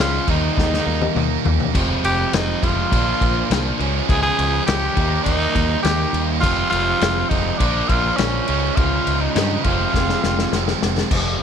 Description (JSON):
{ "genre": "classic rock", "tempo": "102 BPM", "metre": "4/4", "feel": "straight", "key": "F minor", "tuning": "A4 = 440 Hz", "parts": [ { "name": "raspy tenor saxophone", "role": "melody", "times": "0.0-10.8 s", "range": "Db4 to Ab4", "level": "-22 LUFS", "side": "equal", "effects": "slapback echo" }, { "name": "crunchy overdriven guitar", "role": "riff", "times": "0.0-11.4 s", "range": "F2 to Eb4", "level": "-24 LUFS", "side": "equal", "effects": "none" }, { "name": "distorted electric guitar", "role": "riff", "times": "0.0-11.4 s", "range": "F2 to Eb4", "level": "-26 LUFS", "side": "right 14 dB", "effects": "overdrive" }, { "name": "modern bright fingered electric bass", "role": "bass", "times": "0.0-11.4 s", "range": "F1 to G2", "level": "-23 LUFS", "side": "equal", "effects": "none" }, { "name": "vintage drum kit", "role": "drums", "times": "0.0-11.2 s", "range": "crash cymbal, kick drum, snare drum, toms", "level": "-22 LUFS", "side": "left 3 dB", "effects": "none" } ], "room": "small room ambience", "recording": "1960s-style stereo", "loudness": "-16 LUFS", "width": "side -8 dB against mid", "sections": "0.0-11.1 A section", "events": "drum fill 0.6-1.7, 9.9-11.1", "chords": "0.3 Eb; 1.7 Fm; 2.9 Bb; 3.8 Db; 5.0 Eb; 6.4 Fm; 7.6 Bb; 8.5 Db; 9.6 Fm", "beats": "0.57 1.16 | 1.74 2.33 2.92 3.50 | 4.09 4.67 5.26 5.84 | 6.43 7.02 7.60 8.19 | 8.77 9.36 9.94 10.53 | 11.11" }